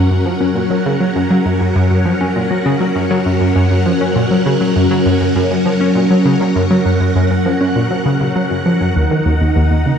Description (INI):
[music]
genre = ambient, sequencer-driven space music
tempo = 100 BPM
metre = 4/4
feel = straight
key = unclear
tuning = A4 = 440 Hz
[part]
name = string machine, full ensemble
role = sustained chords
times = 0.0-10.0 s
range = D#3 to F#5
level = -15 LUFS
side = equal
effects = phaser, ensemble chorus
[part]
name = analog pluck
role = riff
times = 0.0-9.9 s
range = D#2 to C#4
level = -14 LUFS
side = equal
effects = chorus, tape echo
[sound]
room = wet lush hall reverb, RT60 2.6 s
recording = dark, warm production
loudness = -12 LUFS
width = side -7 dB against mid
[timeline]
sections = 0.0-10.0 A section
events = none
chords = 0.0 F#; 9.0 D#m